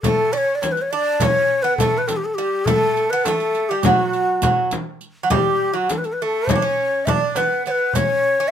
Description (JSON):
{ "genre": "Turkish makam ensemble", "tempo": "205 BPM (eighths)", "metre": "9/8", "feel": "straight", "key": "unclear", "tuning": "A4 = 440 Hz", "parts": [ { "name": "breathy ney", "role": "melody", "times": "0.0-8.5 s", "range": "F#4 to E5", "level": "-19 LUFS", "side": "left 2 dB", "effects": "none" }, { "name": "Greek bouzouki", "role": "second line", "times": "0.0-8.5 s", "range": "F#3 to D4", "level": "-22 LUFS", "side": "right 4 dB", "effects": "none" }, { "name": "darbuka", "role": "percussion", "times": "0.0-8.1 s", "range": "none", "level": "-27 LUFS", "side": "right 2 dB", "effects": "none" }, { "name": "frame drum", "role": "percussion", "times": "0.0-8.1 s", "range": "none", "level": "-24 LUFS", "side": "left 3 dB", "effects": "none" }, { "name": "riq", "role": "percussion", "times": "0.0-8.1 s", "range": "none", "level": "-28 LUFS", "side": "right 3 dB", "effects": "none" } ], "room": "light reverb", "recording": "minimal, uncompressed stereo recording", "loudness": "-17 LUFS", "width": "side -9 dB against mid", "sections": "0.0-8.5 A section", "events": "none", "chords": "none" }